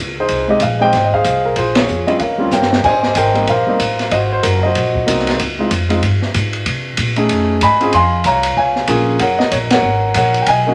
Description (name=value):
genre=jazz piano trio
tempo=188 BPM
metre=4/4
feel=swing 61% on 8ths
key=Ab major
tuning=A4 = 440 Hz
part: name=upright bass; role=bass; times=0.0-10.7 s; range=Gb1 to C3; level=-22 LUFS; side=equal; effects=none
part: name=warm concert grand piano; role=melody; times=0.2-10.7 s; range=Gb3 to C6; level=-16 LUFS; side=equal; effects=none
part: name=open jazz drum kit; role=drums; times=0.3-10.6 s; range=crash cymbal, hi-hat, kick drum, ride cymbal, snare drum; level=-22 LUFS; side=equal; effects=none
room=moderate large studio reverb, RT60 1.3 s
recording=none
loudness=-15 LUFS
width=mono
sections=0.0-2.8 A section; 2.8-10.7 B section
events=band accent 1.7, 9.7; drum fill 2.5-2.8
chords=0.3 Fm7; 1.6 Bbm7; 2.2 Eb9; 2.8 Abmaj9; 4.1 Ab9; 5.4 Db; 6.7 Bbsus2; 7.3 F7alt; 7.9 Bbm7; 9.2 Gbadd9